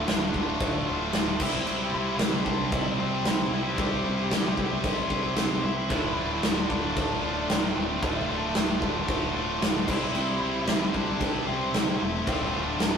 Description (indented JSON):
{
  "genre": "quiet-loud alternative rock",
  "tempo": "113 BPM",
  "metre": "4/4",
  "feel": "straight",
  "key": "D minor",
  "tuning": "A4 = 440 Hz",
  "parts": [
    { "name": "octave-fuzz lead guitar", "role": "melody", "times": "0.0-13.0 s", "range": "A3 to G5", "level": "-34 LUFS", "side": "equal", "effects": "distortion" },
    { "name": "heavy high-gain guitar", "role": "riff", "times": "0.0-13.0 s", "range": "D2 to C5", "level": "-34 LUFS", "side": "left 6 dB", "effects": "distortion" },
    { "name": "high-gain distorted guitar", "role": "riff", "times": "0.0-13.0 s", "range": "D2 to C4", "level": "-32 LUFS", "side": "equal", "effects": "distortion" },
    { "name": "overdriven electric guitar", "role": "riff", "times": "0.0-13.0 s", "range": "D2 to C5", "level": "-32 LUFS", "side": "right 2 dB", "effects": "none" },
    { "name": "fingered electric bass", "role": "bass", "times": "0.0-13.0 s", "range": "D1 to C2", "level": "-37 LUFS", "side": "equal", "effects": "none" },
    { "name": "huge arena drum kit", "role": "drums", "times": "0.1-12.9 s", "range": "crash cymbal, kick drum, snare drum", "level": "-27 LUFS", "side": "equal", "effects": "none" }
  ],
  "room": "moderate stone room reverb, RT60 1.2 s",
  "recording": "rough rehearsal-room recording, tube saturation",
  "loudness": "-24 LUFS",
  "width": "side -7 dB against mid",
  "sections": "0.0-13.0 A section",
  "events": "none",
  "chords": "0.0 Dm; 1.4 C; 5.9 Dm; 9.9 C; 12.3 Dm"
}